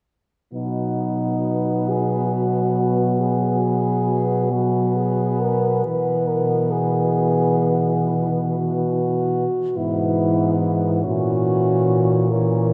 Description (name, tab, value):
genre	classical, lyrical piece for horn quartet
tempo	43-48 BPM (dotted quarters)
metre	12/8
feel	rubato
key	B major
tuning	A4 = 438 Hz
part	warm French horn	melody	0.5-12.7 s	D#4 to B4	-26 LUFS	equal	none
part	clear French horn	second line	0.5-12.7 s	B3 to C#4	-29 LUFS	equal	none
part	mellow French horn	accompaniment	0.5-12.7 s	E3 to F#3	-26 LUFS	equal	none
part	mellow French horn	bass	0.5-12.7 s	G#2 to B2	-25 LUFS	equal	none
room	wet cathedral reverb, RT60 4.6 s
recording	none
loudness	-20 LUFS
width	mono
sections	0.5-12.7 A section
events	none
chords	0.5 B; 5.9 E/B; 11.1 F#7/A#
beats	| 0.53 1.91 3.23 4.52 | 5.86 7.17 8.47 9.76 | 11.05 12.31